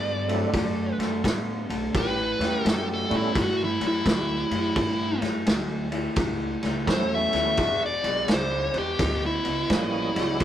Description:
electric blues shuffle; 85 BPM; 4/4; swing 65% on 8ths; A mixolydian; A4 = 441 Hz
dark smooth lead guitar; melody; 0.0-10.4 s; E4 to E5; -26 LUFS; equal; overdrive
electric guitar through a small old amp; riff; 0.0-10.4 s; E2 to B3; -30 LUFS; left 2 dB
upright bass; bass; 0.0-10.4 s; E1 to A2; -33 LUFS; equal
tonewheel organ; accompaniment; 0.3-10.4 s; E3 to D#5; -29 LUFS; right 3 dB; overdrive, chorus vibrato, slow rotary speaker
vintage drum kit; drums; 0.3-10.4 s; kick drum, ride cymbal, snare drum; -27 LUFS; equal
dark horn section; stabs; 1.9-3.2, 7.6-8.8 s; F#3 to G5; -34 LUFS; right 1 dB
moderate small room reverb, RT60 0.6 s; rough rehearsal-room recording; -22 LUFS; side -11 dB against mid
0.0-10.4 A section
lead electric guitar solo 0.0-10.4
0.0 D9; 1.9 A9; 7.6 E9

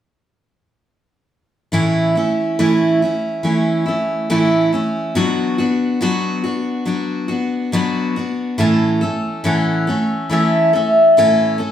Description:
acoustic folk duo or small band; 70 BPM; 4/4; straight; A major; A4 = 440 Hz
picked steel-string acoustic guitar; accompaniment; 1.7-11.7 s; A2 to A4; -16 LUFS; equal
mandolin; melody; 8.6-11.6 s; E5 to A5; -15 LUFS; left 1 dB
wet studio reverb, RT60 0.8 s; heard from further back in the room; -15 LUFS; side -10 dB against mid
1.7-8.6 A section; 8.6-11.7 B section
1.7 A; 5.2 Bm; 8.6 A

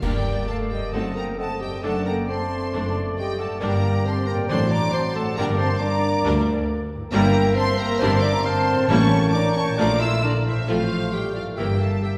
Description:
classical, dramatic, fast romantic movement for symphony orchestra; 135 BPM; 4/4; rubato; G minor; A4 = 442 Hz
rich studio violin section; melody; 0.0-12.1 s; D5 to E6; -34 LUFS; equal
dark clarinet; second line; 0.0-12.2 s; D4 to E5; -32 LUFS; equal
flute section; second line; 0.0-12.2 s; Bb4 to C6; -32 LUFS; equal
rich symphonic violin section; second line; 0.0-11.8 s; C4 to Bb4; -37 LUFS; equal
warm oboe; second line; 0.0-12.2 s; D5 to G5; -37 LUFS; equal
clear symphonic viola section; accompaniment; 0.0-11.8 s; E3 to D4; -31 LUFS; equal
dark bassoon; accompaniment; 0.0-12.2 s; F#3 to C4; -32 LUFS; equal
mellow French horn section; sustained chords; 0.0-12.2 s; D3 to E4; -31 LUFS; equal
concert harp; arpeggios; 0.0-12.2 s; F#2 to D#5; -37 LUFS; equal
warm chamber cello section; bass; 0.0-12.0 s; D2 to Bb2; -30 LUFS; equal
warm symphonic double bass section; bass; 0.0-12.0 s; F#1 to D2; -30 LUFS; equal
clash cymbals and concert bass drum; percussion; 0.0-0.9 s; -34 LUFS; equal
timpani; percussion; 4.5-5.1, 8.9-9.5 s; A2; -30 LUFS; equal
wet scoring stage reverb, RT60 1.7 s; heard from further back in the room; -22 LUFS; mono
0.0-12.2 A section
band accent 0.0-0.5
0.0 Gm; 0.9 F#dim7; 1.8 D7/F#; 3.6 Gm; 4.5 D/A; 5.4 Gm; 7.1 Em7b5/G; 8.9 A7b9; 9.8 Bbmaj7; 10.7 F/A; 11.6 Edim/G

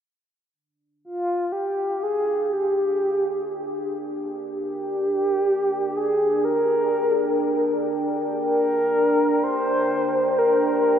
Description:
dark ambient drone; free time; G phrygian; A4 = 441 Hz
deep dark ambient pad; sustained chords; 2.3-11.0 s; D4 to G5; -27 LUFS; right 2 dB; chorus, built-in reverb
mellow horn-like synth lead; melody; 1.0-11.0 s; F4 to C5; -21 LUFS; equal; chorus, diffuse ambient delay
wet huge ambient reverb, RT60 8.8 s; dark, warm production; -20 LUFS; side -8 dB against mid
0.5-11.0 A section
fade-in on ambient pad 0.5-11.0
0.5 Gm

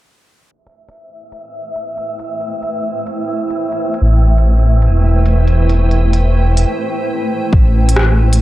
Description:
future garage; 137 BPM; 4/4; swing 64% on 16ths; A minor; A4 = 440 Hz
granular cloud pad; sustained chords; 1.9-8.4 s; A3 to G5; -20 LUFS; right 1 dB; built-in reverb, vintage 12-bit sampler grit, sidechain pumping
wind-like tuned noise texture; texture; 1.2-6.7 s; E5; -25 LUFS; right 1 dB; built-in reverb
organic electronic drum kit; drums; 0.7-8.4 s; hi-hat, rim click; -20 LUFS; equal; overdrive
dark detuned saw bass; bass; 4.0-8.4 s; E1 to A1; -11 LUFS; equal; sidechain pumping
electronic kick drum; drums; 7.5-7.6 s; -10 LUFS; equal; overdrive
little or no reverb; dry, gritty hardware recording, cassette tape, low-pass filter; -12 LUFS; side -16 dB against mid
0.5-7.5 A section
fade-in on ambient pad 0.5-7.5; filter sweep 0.5-7.5; break 6.7-7.5
0.5 Am7

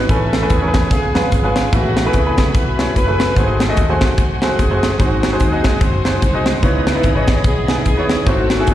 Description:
uptempo gospel; 147 BPM; 4/4; swing 59% on 8ths; C# minor; A4 = 445 Hz
clear horn section; melody; 0.0-8.7 s; A3 to B#4; -22 LUFS; left 1 dB; slapback echo
bright tonewheel organ; sustained chords; 0.0-8.7 s; F#4 to E6; -27 LUFS; right 1 dB; fast rotary speaker, overdrive, chorus vibrato
fingered electric bass; bass; 0.0-8.7 s; F#1 to E#2; -20 LUFS; equal
clear baby grand piano; accompaniment; 0.1-8.7 s; G#2 to E5; -20 LUFS; equal; slapback echo
crisp fusion drum kit; drums; 0.1-8.7 s; hi-hat, kick drum, snare drum; -17 LUFS; equal
light reverb; live gig heard through the venue's PA, recital hall reverb; -13 LUFS; side -12 dB against mid
0.0-8.7 A section
0.1 Amaj9; 0.9 C#7; 1.7 F#m11/A; 3.4 G#7b9; 5.0 G#7; 6.6 C#m9

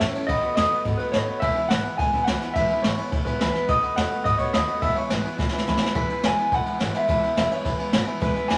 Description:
rockabilly; 212 BPM; 4/4; straight; E major; A4 = 440 Hz
electric guitar through a small old amp; melody; 0.0-8.6 s; B4 to G#5; -26 LUFS; equal; spring reverb
picked steel-string acoustic guitar; accompaniment; 0.0-8.6 s; E2 to F#4; -33 LUFS; equal
warm upright piano; accompaniment; 0.0-8.6 s; C#5 to B5; -34 LUFS; equal
upright bass; bass; 0.0-8.6 s; E1 to A2; -34 LUFS; equal
jazz brush drum kit; drums; 0.0-8.6 s; kick drum, ride cymbal, snare drum; -28 LUFS; equal
wet studio reverb, RT60 0.7 s; -23 LUFS; mono
0.0-6.0 A section; 6.0-8.6 B section
drum fill 5.4-6.0
0.3 B7; 1.4 E; 3.7 B7; 4.8 E

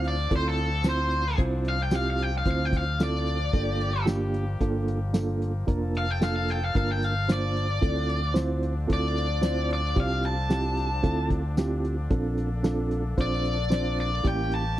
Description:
straight-eighth soul blues; 112 BPM; 4/4; straight; D minor; A4 = 440 Hz
overdriven electric guitar; melody; 0.0-14.8 s; A4 to A5; -30 LUFS; left 1 dB; spring reverb
mellow reed electric piano; accompaniment; 0.0-14.6 s; Bb3 to C5; -29 LUFS; right 3 dB; tremolo
bright horn section; sustained chords; 0.0-14.8 s; D3 to A5; -39 LUFS; left 4 dB
fingered electric bass; bass; 0.0-14.8 s; F1 to D2; -28 LUFS; equal
cloth-damped thuddy drum kit; drums; 0.0-14.6 s; hi-hat, kick drum, snare drum, tambourine; -25 LUFS; left 1 dB
little or no reverb; dry, close 1970s-style studio recording; -24 LUFS; side -14 dB against mid
0.0-14.8 A section
0.0 Dm7; 3.5 Gm7; 7.8 Dm7; 12.1 Bbmaj7; 14.3 A7b9

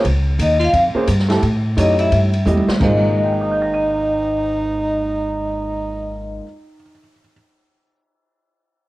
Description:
jazz, small-group swing and bop; 174 BPM; 4/4; swing 62% on 8ths; Ab major; A4 = 436 Hz
warm upright piano; accompaniment; 0.0-7.3 s; Ab2 to Eb7; -23 LUFS; right 2 dB; cassette tape
upright bass; bass; 0.0-6.4 s; Ab1 to A2; -20 LUFS; equal
open jazz drum kit; drums; 0.0-2.9 s; crash cymbal, hi-hat, kick drum, ride cymbal, snare drum, toms; -23 LUFS; right 1 dB; cassette tape
vibraphone with medium hard mallets; melody; 0.4-6.4 s; Eb5 to F5; -20 LUFS; left 1 dB; cassette tape
warm tenor saxophone; second line; 0.4-6.3 s; Eb4 to F4; -24 LUFS; right 2 dB; cassette tape
light reverb, small room ambience; home recording on cassette; -15 LUFS; side -18 dB against mid
0.0-2.8 A section; 2.8-5.6 B section
drum fill 2.5-2.8
0.0 Bbm (rootless); 1.4 A7; 2.8 Ab69

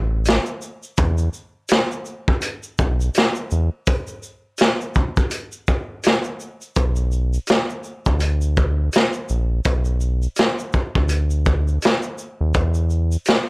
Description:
lo-fi hip hop; 83 BPM; 4/4; swing 58% on 16ths; B minor; A4 = 440 Hz
round analog bass; bass; 0.0-13.2 s; A1 to E2; -18 LUFS; equal; tube saturation
crunchy breakbeat drum kit; drums; 0.3-13.5 s; hi-hat, kick drum, shaker, snare drum; -19 LUFS; equal
light reverb; dry, gritty hardware recording, transformer saturation; -18 LUFS; side -30 dB against mid
0.0-6.8 A section; 6.8-13.5 B section

